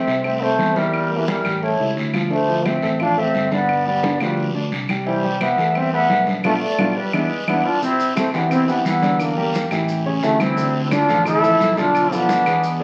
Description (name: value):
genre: Afro-Cuban jazz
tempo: 174 BPM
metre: 4/4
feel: straight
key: C major, A minor from 7.8 s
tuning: A4 = 437 Hz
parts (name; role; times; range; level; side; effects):
- bright trombone; melody; 0.0-12.8 s; E3 to E4; -23 LUFS; equal; none
- hollow concert flute; second line; 0.0-12.8 s; C4 to F5; -27 LUFS; equal; none
- warm grand piano; accompaniment; 0.1-12.8 s; C3 to E5; -26 LUFS; equal; none
- fingered electric bass; bass; 0.1-12.8 s; G1 to E2; -28 LUFS; equal; none
- congas; percussion; 0.1-12.8 s; none; -29 LUFS; equal; none
- guiro; percussion; 0.1-12.8 s; none; -34 LUFS; equal; none
- claves; percussion; 0.2-12.6 s; none; -32 LUFS; equal; none
- maracas; percussion; 7.8-12.8 s; none; -42 LUFS; equal; none
room: wet large studio reverb, RT60 0.9 s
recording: very old 78 rpm record, vinyl crackle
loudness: -19 LUFS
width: mono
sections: 0.0-7.8 A section; 7.8-12.8 B section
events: band accent 6.4-7.8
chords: 0.0 Fmaj7 (rootless); 0.9 Edim; 1.6 A7; 2.3 Dm9; 3.7 G7; 5.1 C6; 6.4 Bm7b5; 7.1 E7; 7.8 Am11 (rootless); 9.2 Em7b5; 9.9 A7; 10.6 Dmadd9; 11.9 Bm7b5